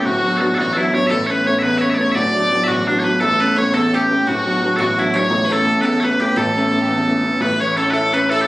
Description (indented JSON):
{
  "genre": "celtic folk, Celtic jig",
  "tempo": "114 BPM (dotted quarters)",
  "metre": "6/8",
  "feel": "straight",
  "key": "A mixolydian",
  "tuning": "A4 = 440 Hz",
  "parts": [
    { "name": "loud bright bagpipes", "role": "melody", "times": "0.0-8.5 s", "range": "A2 to E5", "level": "-18 LUFS", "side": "equal", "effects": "none" },
    { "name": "bright fiddle", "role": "second line", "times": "0.0-8.4 s", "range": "D4 to D5", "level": "-23 LUFS", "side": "left 1 dB", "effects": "none" },
    { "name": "clear upright piano", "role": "accompaniment", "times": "0.0-8.5 s", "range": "D1 to E4", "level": "-18 LUFS", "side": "equal", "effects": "none" },
    { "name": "mandolin", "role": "second line", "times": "3.2-8.4 s", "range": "E4 to C#5", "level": "-27 LUFS", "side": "right 2 dB", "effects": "none" }
  ],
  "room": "moderate studio reverb, RT60 0.5 s",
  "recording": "recorded on a phone in the room, club reverb, compression",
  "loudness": "-14 LUFS",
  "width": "side -18 dB against mid",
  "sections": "0.0-7.4 A section; 7.4-8.5 B section",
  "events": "none",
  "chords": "0.1 D6; 1.1 Aadd9; 2.2 D6; 3.2 Aadd9; 4.3 D6; 5.3 Aadd9; 7.4 A",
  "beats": "| 0.05 0.58 | 1.10 1.63 | 2.16 2.69 | 3.21 3.74 | 4.26 4.79 | 5.31 5.84 | 6.36 6.88 | 7.41 7.93 | 8.45"
}